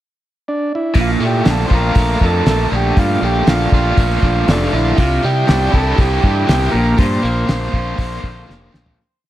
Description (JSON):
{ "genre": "psychedelic rock", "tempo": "120 BPM", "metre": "4/4", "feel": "straight", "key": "unclear", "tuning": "A4 = 440 Hz", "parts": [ { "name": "combo organ", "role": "melody", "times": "0.5-8.4 s", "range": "D4 to C5", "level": "-20 LUFS", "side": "right 2 dB", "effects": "tape echo" }, { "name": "cloth-damped thuddy drum kit", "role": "drums", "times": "0.9-9.0 s", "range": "hi-hat, kick drum, snare drum, toms", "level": "-15 LUFS", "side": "equal", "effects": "none" }, { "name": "bright tonewheel organ", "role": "sustained chords", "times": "1.0-9.0 s", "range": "E5 to D6", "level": "-30 LUFS", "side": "right 2 dB", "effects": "slow rotary speaker" }, { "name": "overdriven electric guitar", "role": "riff", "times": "1.0-9.0 s", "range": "Bb2 to F4", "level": "-20 LUFS", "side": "equal", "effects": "tremolo" }, { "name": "fuzz fingered electric bass", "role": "bass", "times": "1.0-8.9 s", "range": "F1 to C3", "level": "-18 LUFS", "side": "equal", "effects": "overdrive" } ], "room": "light reverb, studio reverb", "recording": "echo-heavy mix", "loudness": "-13 LUFS", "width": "side -14 dB against mid", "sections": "0.0-1.0 pickup bar; 1.0-9.0 pre-chorus", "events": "fade-out 7.0-9.0; drum fill 8.5-9.0", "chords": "0.0 N.C.; 1.0 Bbmaj7; 5.0 Cadd9; 6.7 Bbadd9" }